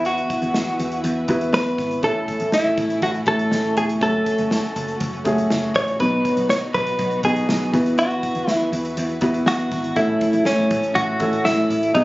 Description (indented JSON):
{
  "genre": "piano-driven pop",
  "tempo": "121 BPM",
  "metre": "4/4",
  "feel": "straight",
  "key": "unclear",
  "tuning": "A4 = 440 Hz",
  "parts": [
    { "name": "direct-recorded clean electric guitar", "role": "melody", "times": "0.0-12.0 s", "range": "C#4 to C#5", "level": "-21 LUFS", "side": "equal", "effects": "none" },
    { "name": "felt-muted upright piano", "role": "accompaniment", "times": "0.0-12.0 s", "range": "A2 to B4", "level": "-23 LUFS", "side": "equal", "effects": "none" },
    { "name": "warm studio string section", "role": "sustained chords", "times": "0.0-12.0 s", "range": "E3 to B4", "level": "-30 LUFS", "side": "right 1 dB", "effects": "none" },
    { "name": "picked electric bass", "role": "bass", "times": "0.0-12.0 s", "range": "E1 to E2", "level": "-28 LUFS", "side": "equal", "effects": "none" },
    { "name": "natural country drum kit", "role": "drums", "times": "0.1-12.0 s", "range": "hi-hat, kick drum, snare drum", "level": "-28 LUFS", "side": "equal", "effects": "none" }
  ],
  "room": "moderate large studio reverb, RT60 0.8 s, small room ambience",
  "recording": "recorded on a phone in the room, studio ambience, nothing above 7.6 kHz",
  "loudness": "-18 LUFS",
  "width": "side -18 dB against mid",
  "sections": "0.0-12.0 A section",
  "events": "none",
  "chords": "0.0 Esus2; 2.0 A; 4.0 F#m; 6.0 B; 7.7 Esus2; 10.0 A",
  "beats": "| 0.05 0.55 1.04 1.54 | 2.03 2.53 3.02 3.52 | 4.02 4.51 5.01 5.50 | 6.00 6.50 6.99 7.49 | 7.98 8.48 8.97 9.47 | 9.97 10.46 10.96 11.46 | 11.95"
}